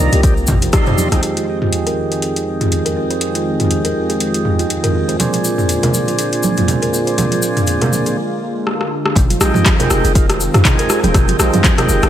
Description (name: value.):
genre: afro house.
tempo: 121 BPM.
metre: 4/4.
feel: swing 57% on 16ths.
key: F dorian.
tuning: A4 = 440 Hz.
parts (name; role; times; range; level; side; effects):
warm analog pad; sustained chords; 0.0-12.1 s; D3 to G4; -23 LUFS; equal; chorus, vintage 12-bit sampler grit, sidechain pumping.
tonewheel organ; stabs; 0.0-12.1 s; F2 to C5; -20 LUFS; right 2 dB; slow rotary speaker, sidechain pumping, low-pass filter, digital delay.
warm 808-style bass; bass; 0.0-1.2, 9.2-12.1 s; Eb1 to F2; -17 LUFS; equal; sidechain pumping.
buzzing kalimba; arpeggios; 0.1-12.1 s; Eb4 to C5; -23 LUFS; right 1 dB; sidechain pumping, low-pass filter, digital delay.
deep house drum kit; drums; 0.1-12.1 s; handclaps, hi-hat, rim click, toms; -18 LUFS; left 1 dB; overdrive.
tube shaker; percussion; 0.1-1.2, 5.2-12.1 s; none; -25 LUFS; left 4 dB; none.
electronic kick drum; drums; 0.2-0.8, 9.2-11.8 s; none; -14 LUFS; equal; overdrive.
congas; percussion; 0.5-1.1, 5.2-11.9 s; none; -20 LUFS; right 3 dB; none.
room: light reverb, digital ambience.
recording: none.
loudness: -13 LUFS.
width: side -11 dB against mid.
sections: 0.0-1.2 A section; 1.2-9.2 B section; 9.2-12.1 C section.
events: band accent 0.7; filter sweep on kalimba 1.2-9.2; filter sweep on analog synth pad 1.2-9.2; break 8.2-9.2; drum fill 8.7-9.2; drop 9.2-12.1.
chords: 0.0 Cm7; 1.2 Fm7; 5.2 Bb7; 9.2 Fm7.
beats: 0.24 0.73 | 1.23 1.72 2.22 2.71 | 3.21 3.71 4.20 4.70 | 5.20 5.69 6.19 6.68 | 7.18 7.67 8.17 8.67 | 9.16 9.66 10.15 10.65 | 11.14 11.64.